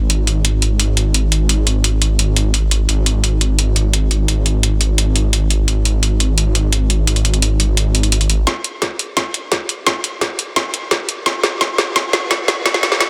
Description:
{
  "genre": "dark technical drum and bass",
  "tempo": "172 BPM",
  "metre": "4/4",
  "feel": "straight",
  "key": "unclear",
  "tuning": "A4 = 440 Hz",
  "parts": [
    { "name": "detuned saw bass", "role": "bass", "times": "0.0-8.5 s", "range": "G#1", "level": "-17 LUFS", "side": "equal", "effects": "chorus, overdrive" },
    { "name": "drum and bass drum kit", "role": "drums", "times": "0.1-13.1 s", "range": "hi-hat, snare drum", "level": "-19 LUFS", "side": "equal", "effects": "high-pass filter on hats, high-pass filter on snare, high-pass filter on toms, high-pass filter on room" },
    { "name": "electronic kick drum", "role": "drums", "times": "8.5-13.1 s", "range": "none", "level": "-31 LUFS", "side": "equal", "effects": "high-pass filter on kick, high-pass filter on room" }
  ],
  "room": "light reverb",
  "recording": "dense, heavily limited modern master, high-pass filter",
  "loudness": "-16 LUFS",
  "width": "mono",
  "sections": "0.0-8.5 A section; 8.5-13.1 B section",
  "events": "build-up 8.5-13.1; drum fill 8.5-13.1",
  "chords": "none",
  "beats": "| 0.10 0.45 0.80 1.14 | 1.49 1.84 2.19 2.54 | 2.89 3.24 3.59 3.94 | 4.28 4.63 4.98 5.33 | 5.68 6.03 6.38 6.73 | 7.08 7.42 7.77 8.12 | 8.47 8.82 9.17 9.52 | 9.87 10.21 10.56 10.91 | 11.26 11.61 11.96 12.31 | 12.66 13.01"
}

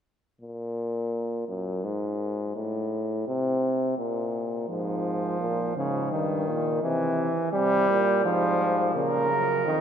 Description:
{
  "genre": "classical, imitative canzona for brass ensemble",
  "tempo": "84 BPM",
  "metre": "3/4",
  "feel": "straight",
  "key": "unclear",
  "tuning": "A4 = 440 Hz",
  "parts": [
    { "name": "clear euphonium", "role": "bass", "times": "0.4-9.8 s", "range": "F2 to C3", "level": "-28 LUFS", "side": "left 1 dB", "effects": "none" },
    { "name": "clear trombone", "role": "accompaniment", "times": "4.7-9.8 s", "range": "Db3 to G3", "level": "-25 LUFS", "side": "right 1 dB", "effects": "none" },
    { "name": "mellow flugelhorn", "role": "second line", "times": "8.9-9.8 s", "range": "Bb4", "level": "-25 LUFS", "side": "right 3 dB", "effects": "none" }
  ],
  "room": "wet cathedral reverb, RT60 4.6 s",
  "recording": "none",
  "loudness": "-24 LUFS",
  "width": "side -8 dB against mid",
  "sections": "0.4-9.8 A section",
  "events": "none",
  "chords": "0.4 Gb; 1.8 N.C.; 2.6 Am; 4.0 N.C.; 4.7 Fm/Ab; 6.1 Eb/G; 6.8 C; 8.3 Fm/Ab; 9.0 Bbm",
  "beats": "| 0.41 1.13 1.84 | 2.56 3.27 3.99 | 4.70 5.41 6.12 | 6.84 7.54 8.25 | 8.96 9.66"
}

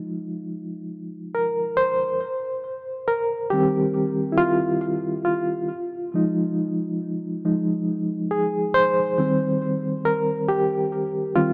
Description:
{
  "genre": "hip hop",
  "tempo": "69 BPM",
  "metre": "4/4",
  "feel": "swing 56% on 16ths",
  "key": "Eb major",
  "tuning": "A4 = 439 Hz",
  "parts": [
    { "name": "barky reed electric piano", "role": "solo", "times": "0.0-11.5 s", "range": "Eb3 to C5", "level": "-24 LUFS", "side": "equal", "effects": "overdrive, fast tremolo, cassette tape, low-pass filter, tape echo" }
  ],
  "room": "light reverb, digital ambience",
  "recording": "rough home demo mix",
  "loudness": "-24 LUFS",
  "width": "mono",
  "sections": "0.0-11.5 A section",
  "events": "reed electric piano solo 0.0-11.5",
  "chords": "0.0 Fm7; 2.2 Eb69; 5.7 Fm7; 9.2 Eb6",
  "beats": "0.49 1.36 | 2.23 3.10 3.97 4.84 | 5.71 6.58 7.45 8.32 | 9.19 10.06 10.93"
}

